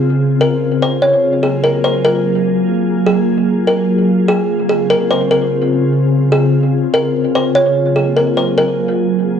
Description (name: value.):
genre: hip hop.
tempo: 147 BPM.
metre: 4/4.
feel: half-time.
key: Gb lydian.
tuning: A4 = 439 Hz.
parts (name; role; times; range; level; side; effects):
kalimba; melody; 0.0-9.0 s; Ab4 to Db5; -15 LUFS; right 1 dB; low-pass filter, cassette tape, plate reverb, analog delay.
glassy FM pad; sustained chords; 0.0-9.4 s; Db3 to Ab4; -14 LUFS; left 1 dB; ensemble chorus, built-in reverb, cassette tape.
room: moderate studio reverb, RT60 0.5 s.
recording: home recording on cassette.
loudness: -12 LUFS.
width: side -8 dB against mid.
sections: 0.0-1.2 A section; 1.2-9.4 B section.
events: none.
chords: 0.0 Dbmaj7; 1.2 Gbmaj9; 4.5 Dbmaj7; 7.8 Gbmaj9.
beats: 0.00 0.41 0.82 | 1.23 1.64 2.04 2.45 | 2.86 3.27 3.67 4.08 | 4.49 4.90 5.31 5.72 | 6.12 6.53 6.94 7.35 | 7.76 8.16 8.57 8.98 | 9.39.